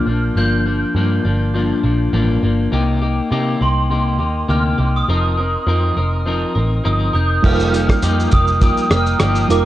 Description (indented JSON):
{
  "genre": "indie pop, bedroom pop",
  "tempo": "102 BPM",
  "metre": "4/4",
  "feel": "swing 55% on 16ths",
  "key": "unclear",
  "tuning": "A4 = 440 Hz",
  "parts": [
    { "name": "glockenspiel with soft plastic mallets", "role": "melody", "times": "0.0-9.6 s", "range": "C6 to G6", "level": "-22 LUFS", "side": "right 1 dB", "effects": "ensemble chorus, slapback echo" },
    { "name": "clean electric guitar", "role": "accompaniment", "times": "0.0-9.7 s", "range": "G2 to Bb4", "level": "-20 LUFS", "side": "left 3 dB", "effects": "wide subtle chorus, vibrato effect" },
    { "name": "vintage muted picked electric bass", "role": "bass", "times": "0.1-9.7 s", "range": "F1 to C3", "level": "-18 LUFS", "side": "right 1 dB", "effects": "none" },
    { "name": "reed electric piano", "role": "accompaniment", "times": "7.4-9.7 s", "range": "G3 to Bb4", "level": "-21 LUFS", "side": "right 6 dB", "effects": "fast tremolo, cassette tape" },
    { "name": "lush unison pad", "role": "sustained chords", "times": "7.4-9.7 s", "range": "Bb4 to Eb6", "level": "-28 LUFS", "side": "right 5 dB", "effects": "chorus" },
    { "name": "cloth-damped thuddy drum kit", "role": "drums", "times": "7.4-9.7 s", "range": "crash cymbal, hi-hat, kick drum, rim click, shaker", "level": "-17 LUFS", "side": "right 1 dB", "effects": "vintage 12-bit sampler grit" }
  ],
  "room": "light reverb",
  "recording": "worn, warbling old tape, cassette tape, warbly pitch drift",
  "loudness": "-14 LUFS",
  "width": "side -14 dB against mid",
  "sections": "0.0-7.4 A section; 7.4-9.7 B section",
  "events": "none",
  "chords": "0.4 Gm7; 2.7 Cm7; 5.1 F7sus4; 7.4 F9sus4",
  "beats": "| 0.35 0.95 1.54 2.13 | 2.72 3.31 3.90 4.49 | 5.08 5.67 6.26 6.85 | 7.44 8.03 8.62 9.21"
}